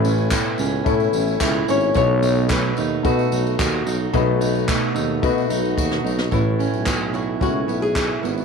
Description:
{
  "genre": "acoustic pop",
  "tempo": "110 BPM",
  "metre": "4/4",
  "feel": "straight",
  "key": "unclear",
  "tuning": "A4 = 440 Hz",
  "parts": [
    { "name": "fingerpicked steel-string acoustic guitar", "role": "accompaniment", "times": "0.0-8.4 s", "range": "A2 to F#4", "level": "-23 LUFS", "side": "right 10 dB", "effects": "none" },
    { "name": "warm grand piano", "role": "accompaniment", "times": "0.0-8.4 s", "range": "A3 to B4", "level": "-24 LUFS", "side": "left 14 dB", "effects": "none" },
    { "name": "warm tuba", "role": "bass", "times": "0.0-8.4 s", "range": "G#1 to B2", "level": "-24 LUFS", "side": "equal", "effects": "none" },
    { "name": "jazz brush drum kit", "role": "drums", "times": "0.0-8.1 s", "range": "handclaps, kick drum, snare drum, tambourine", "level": "-25 LUFS", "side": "equal", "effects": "none" },
    { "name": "tambourine", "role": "percussion", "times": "0.0-8.4 s", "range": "none", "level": "-36 LUFS", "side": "left 15 dB", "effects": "none" },
    { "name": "flamenco guitar", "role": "melody", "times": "1.7-8.2 s", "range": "E4 to C#5", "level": "-24 LUFS", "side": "left 5 dB", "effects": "none" }
  ],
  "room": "light reverb, studio reverb",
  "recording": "1960s-style stereo with parts hard left and right",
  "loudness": "-18 LUFS",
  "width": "side -5 dB against mid",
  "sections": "0.0-6.3 A section; 6.3-8.4 B section",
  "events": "drum fill 5.8-6.3",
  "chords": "0.0 Aadd9; 2.0 B7; 6.3 Aadd9"
}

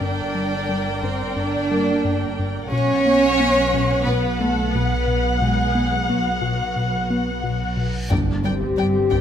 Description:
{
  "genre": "cinematic, suspense film score",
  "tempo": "89 BPM",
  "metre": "4/4",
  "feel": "straight",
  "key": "unclear",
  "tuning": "A4 = 435 Hz",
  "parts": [
    { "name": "warm chamber violin section", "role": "melody", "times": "0.0-9.2 s", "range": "F#5 to G5", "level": "-31 LUFS", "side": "left 4 dB", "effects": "none" },
    { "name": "warm symphonic violin section", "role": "second line", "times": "0.0-9.2 s", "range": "F#4 to D5", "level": "-27 LUFS", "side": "left 1 dB", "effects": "none" },
    { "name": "dark symphonic viola section", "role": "accompaniment", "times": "0.0-9.2 s", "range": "B3 to F#5", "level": "-27 LUFS", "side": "equal", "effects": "none" },
    { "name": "rubbery square bass", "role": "riff", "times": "0.0-9.2 s", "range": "G2 to B3", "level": "-25 LUFS", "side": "left 2 dB", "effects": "none" },
    { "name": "dark symphonic double bass section", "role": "bass", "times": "0.0-9.2 s", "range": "G1 to B1", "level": "-26 LUFS", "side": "right 2 dB", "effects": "none" },
    { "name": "warm chamber cello section", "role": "bass", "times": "0.0-9.2 s", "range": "G2 to D4", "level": "-24 LUFS", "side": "right 3 dB", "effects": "none" },
    { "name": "felt-muted upright piano", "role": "texture", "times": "1.7-8.1 s", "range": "Bb3 to Bb4", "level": "-29 LUFS", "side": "left 3 dB", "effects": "none" },
    { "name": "reverse cymbal and impact", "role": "sound effects", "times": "7.8-9.2 s", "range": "none", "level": "-31 LUFS", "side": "equal", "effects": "none" },
    { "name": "taiko ensemble", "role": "drums", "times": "8.1-9.2 s", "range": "none", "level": "-29 LUFS", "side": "equal", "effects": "none" },
    { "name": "timpani", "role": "percussion", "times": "8.1-9.1 s", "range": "G2", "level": "-28 LUFS", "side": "left 1 dB", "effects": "none" },
    { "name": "dark French horn section", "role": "sustained chords", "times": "8.4-9.2 s", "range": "G4", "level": "-22 LUFS", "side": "left 6 dB", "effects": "none" },
    { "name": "mellow clarinet", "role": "second line", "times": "8.5-9.2 s", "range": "G4", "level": "-29 LUFS", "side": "left 7 dB", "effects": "none" }
  ],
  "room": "moderate scoring stage reverb, RT60 1.7 s",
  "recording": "none",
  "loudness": "-18 LUFS",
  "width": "side -9 dB against mid",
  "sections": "0.0-8.1 A section; 8.1-9.2 A section",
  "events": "reverse cymbal 7.8-8.1; impact 8.1-9.2",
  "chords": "0.0 Gm; 2.7 B5; 8.1 Gm"
}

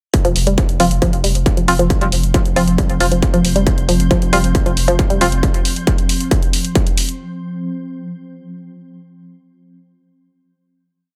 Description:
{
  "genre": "driving peak-time techno",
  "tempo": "136 BPM",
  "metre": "4/4",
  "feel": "straight",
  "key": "unclear",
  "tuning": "A4 = 444 Hz",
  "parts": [
    { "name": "swarming drone", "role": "drone", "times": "2.0-7.2 s", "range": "F3 to C4", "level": "-27 LUFS", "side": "equal", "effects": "built-in reverb, sidechain pumping" },
    { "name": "electronic hi-hat", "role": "drums", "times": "0.1-7.2 s", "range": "none", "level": "-25 LUFS", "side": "equal", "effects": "sidechain pumping on hats" },
    { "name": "electronic kick drum", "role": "drums", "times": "0.1-6.8 s", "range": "none", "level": "-19 LUFS", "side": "equal", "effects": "distortion" },
    { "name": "woody wave-folded pluck", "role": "riff", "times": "0.2-5.2 s", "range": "F3 to G3", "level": "-22 LUFS", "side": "equal", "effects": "chorus, sidechain pumping, tape echo" },
    { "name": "saturated sub bass", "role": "bass", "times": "0.2-5.4 s", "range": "F1", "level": "-21 LUFS", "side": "equal", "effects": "tube saturation, sidechain pumping, low-pass filter" },
    { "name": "filtered dub chord stab", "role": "stabs", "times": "0.8-5.3 s", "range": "F3 to F4", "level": "-22 LUFS", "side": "equal", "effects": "chorus, sidechain pumping, tape echo" }
  ],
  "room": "little or no reverb",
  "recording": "none",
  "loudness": "-15 LUFS",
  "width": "mono",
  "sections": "0.1-7.2 groove",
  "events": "filter sweep on synth arpeggio sound 0.1-5.4",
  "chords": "0.1 F5"
}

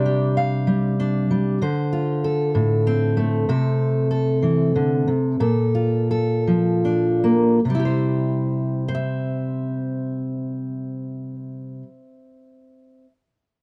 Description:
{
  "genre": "folk, solo fingerstyle acoustic guitar",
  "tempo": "48-65 BPM (dotted quarters)",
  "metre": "6/8",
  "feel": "straight",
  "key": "C mixolydian",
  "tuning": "A4 = 439 Hz",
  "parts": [
    { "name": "fingerpicked steel-string acoustic guitar", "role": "solo", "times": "0.0-13.1 s", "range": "A2 to F5", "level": "-21 LUFS", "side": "equal", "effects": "none" }
  ],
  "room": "light reverb",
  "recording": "dark, warm production",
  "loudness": "-21 LUFS",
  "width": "mono",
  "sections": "0.0-7.6 A section; 7.6-12.6 B section",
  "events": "slowing down 3.5-7.6",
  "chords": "0.0 Csus2; 1.6 Dm7; 3.5 C69; 5.4 Bbmaj7; 7.6 C"
}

